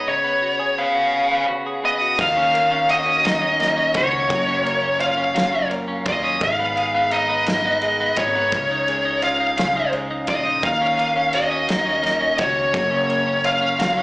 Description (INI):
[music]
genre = six-eight pop ballad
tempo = 57 BPM (dotted quarters)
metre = 6/8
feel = straight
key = unclear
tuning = A4 = 440 Hz
[part]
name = smooth overdriven lead guitar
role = melody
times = 0.0-14.0 s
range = C#5 to E#5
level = -18 LUFS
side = equal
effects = slapback echo, tape echo
[part]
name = twelve-string electric guitar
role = accompaniment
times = 0.0-14.0 s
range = G#2 to G#4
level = -25 LUFS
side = equal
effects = slapback echo
[part]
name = upright bass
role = bass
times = 2.2-14.0 s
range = F#1 to D#2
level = -33 LUFS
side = equal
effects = none
[part]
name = loose indie drum kit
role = drums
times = 2.2-14.0 s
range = crash cymbal, kick drum, ride cymbal, snare drum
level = -28 LUFS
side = equal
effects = none
[sound]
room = moderate club reverb, RT60 0.7 s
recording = live gig heard through the venue's PA, club ambience, small speaker sound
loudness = -17 LUFS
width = side -22 dB against mid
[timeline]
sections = 0.0-2.2 A section; 2.2-14.0 B section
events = none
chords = 0.1 C#7sus4; 2.2 D#m7; 4.3 F#maj7; 6.4 G#m; 8.5 C#add9; 10.6 D#m7; 12.7 F#maj7